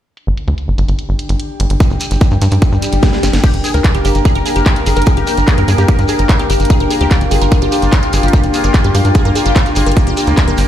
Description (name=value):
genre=psychedelic trance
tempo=147 BPM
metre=4/4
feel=straight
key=G phrygian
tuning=A4 = 444 Hz
part: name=garage drum kit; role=drums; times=0.2-10.7 s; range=crash cymbal, handclaps, hi-hat, snare drum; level=-22 LUFS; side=equal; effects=low-pass filter on hats, low-pass filter on snare, low-pass filter on cymbals
part: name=airy breathy pad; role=texture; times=0.8-10.7 s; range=D4 to G5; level=-20 LUFS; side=left 2 dB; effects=chorus, sidechain pumping
part: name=tight sequencer bass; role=bass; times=0.3-10.6 s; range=G1 to G2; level=-13 LUFS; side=equal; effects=none
part: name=electronic kick drum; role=drums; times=1.8-10.5 s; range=none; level=-10 LUFS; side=equal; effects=none
part: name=shekere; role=percussion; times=1.8-10.7 s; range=none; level=-27 LUFS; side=right 2 dB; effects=none
part: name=swell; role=sound effects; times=2.7-3.4 s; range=none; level=-21 LUFS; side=equal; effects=none
part: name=bubbling stepped-filter texture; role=sustained chords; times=3.6-10.7 s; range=Bb3 to Bb4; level=-19 LUFS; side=left 1 dB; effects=chorus, built-in reverb, sidechain pumping
part: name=wide unison pluck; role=riff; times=3.4-10.6 s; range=G4 to G5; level=-21 LUFS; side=moving between left 6 dB and right 6 dB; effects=auto-pan, sidechain pumping, digital delay
room=little or no reverb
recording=played on a big sound system in a bare room, stone room reverb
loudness=-10 LUFS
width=side -11 dB against mid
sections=0.2-3.4 A section; 3.4-10.7 B section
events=fade-in on analog synth pad 0.2-3.4; filter sweep on drum 0.2-3.4; swell 2.7-3.4; drum fill 3.0-3.4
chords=0.2 G5